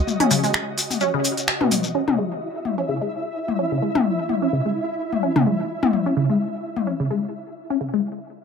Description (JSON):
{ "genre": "minimal techno", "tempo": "128 BPM", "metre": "4/4", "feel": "swing 55% on 16ths", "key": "unclear", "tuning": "A4 = 441 Hz", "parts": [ { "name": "flickering grainy texture", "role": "texture", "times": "0.0-7.6 s", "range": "E4 to E5", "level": "-28 LUFS", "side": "right 2 dB", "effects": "built-in reverb" }, { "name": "electronic toms", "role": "percussion", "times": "0.1-6.8 s", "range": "none", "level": "-22 LUFS", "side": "left 5 dB", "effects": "overdrive" }, { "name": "shekere", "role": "percussion", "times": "0.1-1.9 s", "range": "none", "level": "-27 LUFS", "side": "left 4 dB", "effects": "none" }, { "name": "resonant blip pluck", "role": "riff", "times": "0.2-8.0 s", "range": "B2 to C#4", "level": "-23 LUFS", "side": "equal", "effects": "phaser, dub echo" }, { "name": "techno drum kit", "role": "drums", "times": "0.2-1.8 s", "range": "finger snaps, hi-hat", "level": "-24 LUFS", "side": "right 2 dB", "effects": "none" } ], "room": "wet small room ambience, RT60 0.5 s", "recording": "none", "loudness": "-20 LUFS", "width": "side -6 dB against mid", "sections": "0.0-1.9 A section; 1.9-8.4 B section", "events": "band accent 1.5", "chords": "none" }